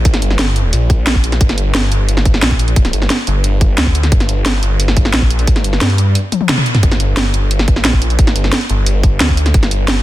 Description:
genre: dark technical drum and bass.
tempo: 177 BPM.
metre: 4/4.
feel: straight.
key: G minor.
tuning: A4 = 438 Hz.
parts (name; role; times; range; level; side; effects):
snarling distorted saw bass; bass; 0.0-10.0 s; G1 to G2; -14 LUFS; equal; distortion, overdrive, sidechain pumping.
drum and bass drum kit; drums; 0.1-9.9 s; hi-hat, snare drum, toms; -16 LUFS; equal; none.
electronic kick drum; drums; 0.1-9.6 s; none; -12 LUFS; equal; none.
room: little or no reverb.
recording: dense, heavily limited modern master.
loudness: -11 LUFS.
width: side -15 dB against mid.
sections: 0.0-6.8 A section; 6.8-10.0 A section.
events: drop 0.0-6.8, 6.8-10.0; drum fill 6.3-6.8; band accent 6.5.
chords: none.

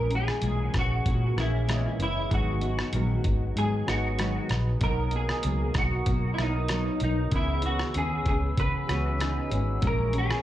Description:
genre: indie pop, bedroom pop.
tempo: 96 BPM.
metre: 4/4.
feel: straight.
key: B major.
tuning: A4 = 440 Hz.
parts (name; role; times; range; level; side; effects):
clean electric guitar; melody; 0.0-10.4 s; D#4 to B4; -31 LUFS; equal; ensemble chorus, slapback echo, analog delay.
chorused retro synth keys; accompaniment; 0.0-10.4 s; E3 to D#5; -37 LUFS; right 2 dB; slapback echo.
nylon-string guitar; accompaniment; 0.0-10.4 s; G#2 to G#4; -34 LUFS; left 1 dB; lush chorus, vibrato effect, slapback echo.
vintage muted fingered electric bass; bass; 0.0-10.3 s; F#1 to C#3; -28 LUFS; equal; none.
lo-fi sampler-style drum kit; drums; 0.1-10.4 s; hi-hat, kick drum, rim click; -30 LUFS; equal; none.
glass harmonica; sustained chords; 4.8-10.4 s; A#4 to E6; -37 LUFS; equal; none.
room: light reverb.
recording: live gig heard through the venue's PA, club reverb.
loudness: -24 LUFS.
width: side -13 dB against mid.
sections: 0.0-10.4 A section.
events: none.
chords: 0.0 A#m7b5; 2.3 G#m7; 4.8 Bmaj7; 7.3 C#m7; 9.8 A#m7b5.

